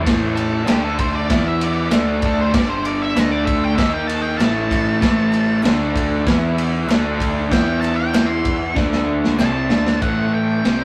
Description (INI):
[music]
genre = garage rock duo or trio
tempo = 96 BPM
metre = 4/4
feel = straight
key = unclear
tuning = A4 = 441 Hz
[part]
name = combo organ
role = sustained chords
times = 0.0-10.8 s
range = B3 to E5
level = -37 LUFS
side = equal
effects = none
[part]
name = crunchy overdriven guitar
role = riff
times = 0.0-10.8 s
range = G2 to E4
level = -22 LUFS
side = equal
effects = none
[part]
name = growling picked electric bass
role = bass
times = 0.1-10.8 s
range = G1 to E2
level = -28 LUFS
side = equal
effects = overdrive, tube saturation
[part]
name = raw garage drum kit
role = drums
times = 0.1-10.8 s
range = crash cymbal, kick drum, ride cymbal, snare drum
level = -22 LUFS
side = equal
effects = none
[part]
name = octave-fuzz lead guitar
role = melody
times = 0.4-10.8 s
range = G4 to C6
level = -27 LUFS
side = equal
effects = distortion
[part]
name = group handclap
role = percussion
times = 0.4-9.5 s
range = none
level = -39 LUFS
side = equal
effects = none
[sound]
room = moderate small room ambience, RT60 0.5 s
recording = rough rehearsal-room recording, tube saturation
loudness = -18 LUFS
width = mono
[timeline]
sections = 0.1-10.0 A section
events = lead electric guitar solo 0.1-10.0; drum fill 8.8-10.0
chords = 0.1 A; 0.7 D5; 1.3 E5; 1.9 D5; 2.5 G5; 3.2 D5; 3.8 D#5; 4.4 A; 5.6 D5; 6.3 E5; 6.9 D5; 7.5 E5; 8.8 D5; 9.4 A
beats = | 0.05 0.67 1.29 1.91 | 2.53 3.15 3.78 4.40 | 5.02 5.65 6.27 6.90 | 7.52 8.15 8.77 9.40 | 10.03 10.65